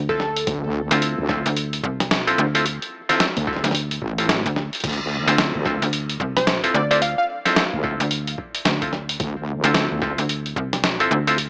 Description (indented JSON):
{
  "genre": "glitch hop",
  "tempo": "110 BPM",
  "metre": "4/4",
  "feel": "swing 61% on 16ths",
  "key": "D minor",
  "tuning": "A4 = 439 Hz",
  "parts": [
    { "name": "slap-like FM bass", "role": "bass", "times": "0.0-11.5 s", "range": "C2 to D2", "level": "-23 LUFS", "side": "equal", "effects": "none" },
    { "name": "plucky unison lead", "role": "melody", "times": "0.1-0.5, 6.4-7.3 s", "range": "A4 to F5", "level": "-24 LUFS", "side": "equal", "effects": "tape echo" },
    { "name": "overdriven clav", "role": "stabs", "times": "0.1-11.4 s", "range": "C4 to A4", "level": "-23 LUFS", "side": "equal", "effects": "sidechain pumping, tape echo" },
    { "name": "electronic kick drum", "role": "drums", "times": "0.1-10.7 s", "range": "none", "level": "-33 LUFS", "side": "equal", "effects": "none" },
    { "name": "boom bap sampler-style drum kit", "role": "drums", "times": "0.2-11.5 s", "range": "crash cymbal, hi-hat, snare drum", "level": "-22 LUFS", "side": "equal", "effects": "none" },
    { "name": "wobble bass", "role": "bass", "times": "0.5-10.2 s", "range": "A1 to D2", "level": "-24 LUFS", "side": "equal", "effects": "chorus, overdrive" }
  ],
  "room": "light reverb",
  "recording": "dry, gritty hardware recording, transformer saturation, small speaker sound",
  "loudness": "-18 LUFS",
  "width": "side -38 dB against mid",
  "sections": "0.0-11.5 A section",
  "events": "none",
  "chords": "0.0 Dm9",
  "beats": "| 0.47 1.02 1.56 2.11 | 2.65 3.20 3.75 4.29 | 4.84 5.38 5.93 6.47 | 7.02 7.56 8.11 8.65 | 9.20 9.74 10.29 10.84 | 11.38"
}